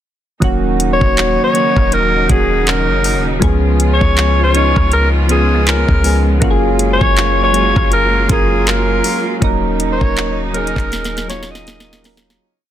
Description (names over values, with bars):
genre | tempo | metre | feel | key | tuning
contemporary R&B | 80 BPM | 4/4 | swing 58% on 16ths | Eb minor | A4 = 439 Hz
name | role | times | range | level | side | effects
soft electric-piano-like synth keys | accompaniment | 0.4-12.4 s | Eb3 to Bb4 | -18 LUFS | right 1 dB | chorus
clear studio string section | sustained chords | 0.4-12.4 s | Db3 to F4 | -23 LUFS | right 1 dB | sidechain pumping
clean 808-style bass | bass | 0.4-12.4 s | Eb1 to Db2 | -17 LUFS | equal | none
smooth R&B drum kit | drums | 0.4-12.5 s | handclaps, hi-hat, kick drum, rim click, snare drum | -17 LUFS | equal | none
raspy alto saxophone | melody | 0.9-12.0 s | Ab4 to Eb5 | -17 LUFS | left 1 dB | ping-pong delay
room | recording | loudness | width
digital ambience | dense, heavily limited modern master | -11 LUFS | side -11 dB against mid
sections
0.4-12.4 chorus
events
fade-out 9.4-12.4; drum fill 10.9-12.4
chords
0.4 Ebm7; 3.4 Db7; 6.4 Gbmaj9; 9.4 Ebm7